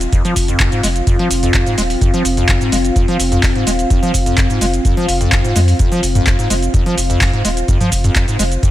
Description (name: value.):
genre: acid house.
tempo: 127 BPM.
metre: 4/4.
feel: straight.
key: F minor.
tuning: A4 = 442 Hz.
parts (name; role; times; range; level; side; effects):
dark analog pad; sustained chords; 0.0-8.7 s; C4 to F5; -20 LUFS; left 2 dB; chorus, sidechain pumping.
warm sub bass; bass; 0.0-8.6 s; Eb1 to F2; -18 LUFS; equal; sidechain pumping.
booming analog drum machine; drums; 0.0-8.7 s; handclaps, hi-hat, shaker, toms; -19 LUFS; equal; none.
ethereal airy pad; texture; 0.0-8.7 s; F4 to F5; -29 LUFS; right 1 dB; ensemble chorus, built-in reverb, sidechain pumping.
acid bass, square; riff; 0.1-8.7 s; F2 to Ab3; -19 LUFS; equal; tube saturation, lush chorus, sidechain pumping.
electronic kick drum; drums; 0.1-8.7 s; none; -15 LUFS; equal; none.
room: digital ambience.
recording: none.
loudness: -12 LUFS.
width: side -14 dB against mid.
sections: 0.0-8.7 A section.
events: fade-in on ambient pad 0.0-8.7.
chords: 0.0 F5.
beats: | 0.13 0.60 1.07 1.54 | 2.02 2.49 2.96 3.43 | 3.91 4.38 4.85 5.32 | 5.79 6.27 6.74 7.21 | 7.68 8.16 8.63.